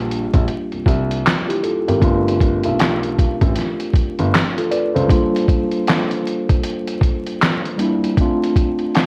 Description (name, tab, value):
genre	lo-fi hip hop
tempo	78 BPM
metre	4/4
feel	swing 62% on 16ths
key	unclear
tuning	A4 = 438 Hz
part	mellow tine electric piano	accompaniment	0.0-9.1 s	G3 to D5	-22 LUFS	equal	none
part	dark baby grand piano	bass	0.0-5.1 s	G1 to Db2	-23 LUFS	equal	none
part	lo-fi sampler-style drum kit	drums	0.1-9.1 s	handclaps, hi-hat, kick drum, snare drum	-20 LUFS	equal	none
room	light reverb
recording	worn, warbling old tape, cassette tape, vinyl crackle, warbly pitch drift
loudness	-18 LUFS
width	mono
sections	0.0-9.1 A section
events	none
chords	0.0 C9sus4; 2.0 G9sus4; 5.1 Gm9; 8.2 F6/A